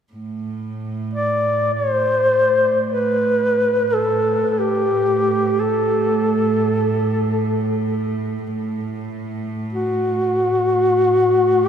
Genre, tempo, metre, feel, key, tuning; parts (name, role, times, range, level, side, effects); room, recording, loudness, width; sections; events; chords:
caucasian folk, Caucasian lament; free time; A dorian; A4 = 439 Hz
rich chamber string section; drone; 0.1-11.7 s; A2; -24 LUFS; right 3 dB
dark duduk; melody; 1.1-11.7 s; F#4 to D5; -17 LUFS; left 1 dB
wet cathedral reverb, RT60 6.1 s; in a vast, echoing space; -16 LUFS; side -8 dB against mid
0.1-11.7 A section